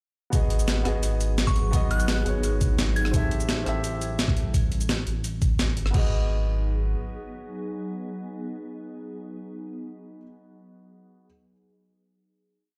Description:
liquid drum and bass; 171 BPM; 4/4; straight; G# minor; A4 = 440 Hz
dark baby grand piano; accompaniment; 0.3-11.3 s; B3 to E5; -35 LUFS; equal; digital delay
glassy FM pad; sustained chords; 1.3-9.5 s; F#3 to A4; -38 LUFS; equal; ensemble chorus, built-in reverb, phaser, sidechain pumping
warm sub bass; bass; 0.3-7.0 s; G1 to A1; -28 LUFS; equal
breakbeat sampler-style drum kit; drums; 0.3-6.0 s; crash cymbal, hi-hat, rim click, shaker, snare drum; -32 LUFS; equal
electronic kick drum; drums; 0.3-6.0 s; -26 LUFS; equal
glassy synth bell; melody; 1.5-3.2 s; C#6 to G#6; -36 LUFS; equal; chorus, dub echo
little or no reverb; played on a big sound system in a bare room, large studio reverb; -25 LUFS; mono
0.3-5.9 drop; 5.9-8.8 final chord
drop 0.3-5.9
0.3 G#m7; 3.1 Am7; 5.9 G#m7

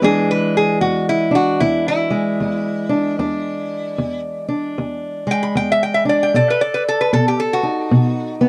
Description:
acoustic country blues, solo or duo; 76 BPM; 4/4; swing 62% on 8ths; E mixolydian; A4 = 440 Hz
lap resonator guitar; melody; 0.0-8.3 s; E4 to B5; -20 LUFS; equal
fingerpicked steel-string acoustic guitar; accompaniment; 0.0-8.5 s; E2 to A4; -21 LUFS; equal
moderate booth ambience, RT60 0.2 s; dark, warm production; -18 LUFS; mono
0.0-8.5 A section
resonator guitar played with a steel bar solo 0.0-8.5
0.0 E7; 6.3 B7

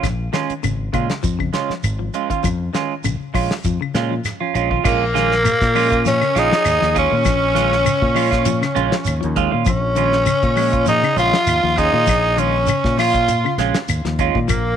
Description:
afrobeat; 100 BPM; 4/4; swing 53% on 16ths; Bb minor; A4 = 439 Hz
semi-hollow electric guitar; arpeggios; 0.0-14.8 s; Bb2 to F3; -26 LUFS; left 12 dB
clean electric guitar; stabs; 0.0-14.4 s; Ab3 to F4; -23 LUFS; right 13 dB; phaser
fingered electric bass; bass; 0.0-14.8 s; Ab1 to Bb2; -22 LUFS; left 1 dB
damped 70s drum kit; drums; 0.0-14.6 s; crash cymbal, hi-hat, kick drum, snare drum; -24 LUFS; left 1 dB
claves; percussion; 0.0-14.7 s; -26 LUFS; left 13 dB
shekere; percussion; 0.0-14.7 s; -26 LUFS; right 4 dB
raspy tenor saxophone; melody; 4.9-14.8 s; Bb3 to F4; -18 LUFS; left 1 dB; tape echo
bright alto saxophone; second line; 4.9-14.8 s; Bb3 to Ab4; -25 LUFS; right 14 dB
small room ambience; 1960s-style stereo with parts hard left and right; -15 LUFS; side -8 dB against mid
0.0-4.9 A section; 4.9-14.8 B section
0.0 Bbm7

